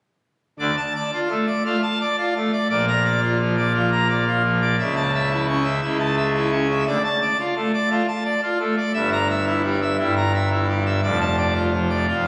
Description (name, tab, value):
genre	classical, organ toccata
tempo	115 BPM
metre	4/4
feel	straight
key	D minor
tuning	A4 = 440 Hz
part	pipe organ, full organ	solo	0.6-12.3 s	F1 to Bb5	-21 LUFS	equal	none
room	wet concert hall reverb, RT60 2.4 s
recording	recorded on a phone in the room, studio reverb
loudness	-21 LUFS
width	mono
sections	0.6-12.3 A section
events	none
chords	0.6 Dm; 2.7 Bb; 4.8 A/C#; 6.9 Dm; 8.9 Edim/G; 11.0 Dm/F